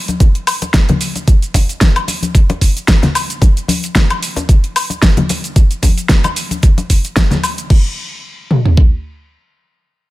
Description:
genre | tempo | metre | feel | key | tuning
nu-disco | 112 BPM | 4/4 | swing 55% on 16ths | none | none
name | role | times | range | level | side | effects
pop drum kit | drums | 0.1-7.8 s | crash cymbal, hi-hat, shaker, snare drum, woodblock | -17 LUFS | equal | overdrive
cabasa and congas | percussion | 0.1-7.7 s | none | -19 LUFS | left 3 dB | none
pop drum kit | drums | 0.2-8.9 s | kick drum, toms | -10 LUFS | equal | overdrive
room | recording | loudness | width
digital ambience | none | -11 LUFS | side -18 dB against mid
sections
0.0-7.7 A section; 7.7-10.1 B section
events
drop 0.0-7.7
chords
none

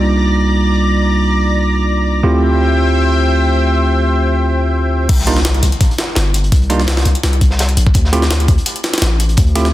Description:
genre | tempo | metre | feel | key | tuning
drum and bass, jungle | 168 BPM | 4/4 | swing 53% on 16ths | unclear | A4 = 445 Hz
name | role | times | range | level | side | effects
lush unison pad | sustained chords | 0.0-5.1 s | C5 to Bb5 | -18 LUFS | left 2 dB | chorus
bell-like tine electric piano | stabs | 0.0-9.7 s | G3 to G4 | -17 LUFS | right 3 dB | vintage 12-bit sampler grit, low-pass filter, dub echo
long sustained 808-style bass | bass | 0.0-9.7 s | G1 to D2 | -14 LUFS | equal | none
crunchy breakbeat drum kit | drums | 5.1-9.6 s | hi-hat, snare drum | -25 LUFS | equal | high-pass filter on hats, high-pass filter on snare, high-pass filter on room
jungle sampler-style drum kit | drums | 5.1-9.7 s | crash cymbal, hi-hat, kick drum, snare drum | -15 LUFS | equal | none
impact | sound effects | 5.2-6.5 s | none | -26 LUFS | left 1 dB | none
room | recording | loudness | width
light reverb, digital ambience | dense, heavily limited modern master | -11 LUFS | side -15 dB against mid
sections
0.0-5.1 A section; 5.1-9.7 B section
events
drop 5.1-9.7; impact 5.1-6.5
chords
0.0 Cm11; 2.2 Dm11; 5.1 C5; 7.9 Dm11

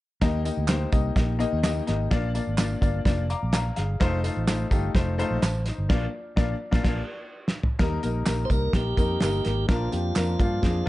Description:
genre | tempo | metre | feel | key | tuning
uptempo 1960s-style soul | 127 BPM | 4/4 | straight | Eb major | A4 = 441 Hz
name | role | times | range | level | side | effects
clear upright piano | accompaniment | 0.2-10.9 s | F3 to D6 | -28 LUFS | left 4 dB | none
fingered electric bass | bass | 0.2-10.8 s | F1 to G2 | -27 LUFS | equal | none
cloth-damped thuddy drum kit | drums | 0.2-10.7 s | crash cymbal, hi-hat, kick drum, snare drum, toms | -25 LUFS | right 1 dB | none
tambourine and handclaps | percussion | 0.2-10.7 s | none | -38 LUFS | right 4 dB | none
tonewheel organ | melody | 8.5-10.9 s | F4 to C5 | -29 LUFS | right 2 dB | overdrive, stopped rotary speaker
room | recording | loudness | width
light reverb, small room ambience | dark, warm production, nothing above 10.5 kHz | -22 LUFS | side -17 dB against mid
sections
0.2-7.8 A section; 7.8-10.9 B section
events
upright piano fill 3.1-4.0; band accent 5.9-7.8; drum fill 6.8-7.8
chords
0.2 Eb; 2.1 Bb; 4.0 F7; 5.9 Bb; 7.8 Eb; 9.7 Bb

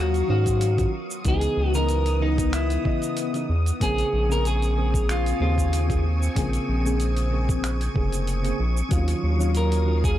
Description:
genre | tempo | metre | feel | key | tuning
sunset chillout | 94 BPM | 4/4 | swing 53% on 16ths | Bb minor | A4 = 442 Hz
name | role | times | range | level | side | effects
clean electric guitar | melody | 0.0-10.2 s | Eb4 to Bb4 | -27 LUFS | left 1 dB | vibrato effect, tape echo
soft electric-piano-like synth keys | accompaniment | 0.0-10.2 s | Db3 to F5 | -29 LUFS | equal | chorus, auto-pan
soft string machine | sustained chords | 0.0-10.2 s | Gb3 to Eb6 | -32 LUFS | left 1 dB | phaser, ensemble chorus
round analog bass | bass | 0.0-10.2 s | F1 to Ab2 | -23 LUFS | equal | tube saturation
wind-like tuned noise texture | texture | 0.0-10.2 s | Eb6 | -39 LUFS | equal | built-in reverb
dusty soul sampler-style drum kit | drums | 0.1-10.2 s | finger snaps, hi-hat, shaker | -35 LUFS | right 2 dB | none
electronic kick drum | drums | 0.5-10.2 s | none | -25 LUFS | equal | none
room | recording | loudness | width
little or no reverb | dry, gritty hardware recording | -21 LUFS | side -12 dB against mid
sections
0.0-10.2 A section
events
none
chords
0.0 Ebm9; 0.9 Dbm9; 3.8 Bbm9; 8.9 Ebm9

